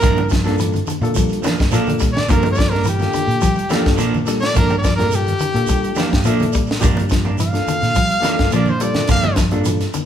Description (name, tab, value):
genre	afrobeat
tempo	106 BPM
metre	4/4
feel	straight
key	G dorian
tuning	A4 = 440 Hz
part	clear trumpet	melody	0.0-9.4 s	G4 to F5	-21 LUFS	equal	none
part	barky reed electric piano	accompaniment	0.0-9.9 s	Bb3 to F5	-25 LUFS	left 4 dB	fast tremolo
part	clean electric guitar	arpeggios	0.0-10.1 s	D3 to G3	-26 LUFS	left 3 dB	warbly pitch drift
part	electric guitar at the edge of break-up	stabs	0.0-9.8 s	F3 to D4	-24 LUFS	right 4 dB	none
part	fingered electric bass	bass	0.0-9.9 s	G2 to G3	-21 LUFS	equal	none
part	tight funk drum kit	drums	0.0-10.1 s	hi-hat, kick drum, snare drum	-20 LUFS	equal	none
part	congas	percussion	0.0-10.1 s	none	-27 LUFS	right 1 dB	none
part	shekere	percussion	0.0-10.1 s	none	-28 LUFS	right 4 dB	none
room	wet large studio reverb, RT60 1.2 s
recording	band playing live in one room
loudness	-15 LUFS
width	side -9 dB against mid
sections	0.0-10.1 A section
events	trumpet solo 0.0-10.1; reed electric piano fill 5.7-6.8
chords	0.0 Gm7